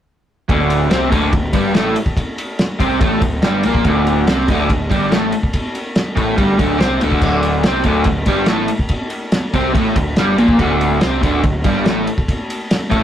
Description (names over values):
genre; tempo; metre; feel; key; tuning
garage rock duo or trio; 142 BPM; 4/4; straight; unclear; A4 = 440 Hz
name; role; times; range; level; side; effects
crunchy overdriven guitar; riff; 0.5-13.0 s; D2 to C4; -15 LUFS; equal; none
fuzz picked electric bass; bass; 0.5-13.0 s; D1 to C2; -22 LUFS; equal; overdrive
cloth-damped thuddy drum kit; drums; 0.5-13.0 s; crash cymbal, kick drum, ride cymbal, snare drum; -18 LUFS; equal; none
room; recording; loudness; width
moderate small room reverb, RT60 0.5 s; rough rehearsal-room recording; -14 LUFS; side -10 dB against mid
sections
0.5-13.0 A section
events
none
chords
0.5 D5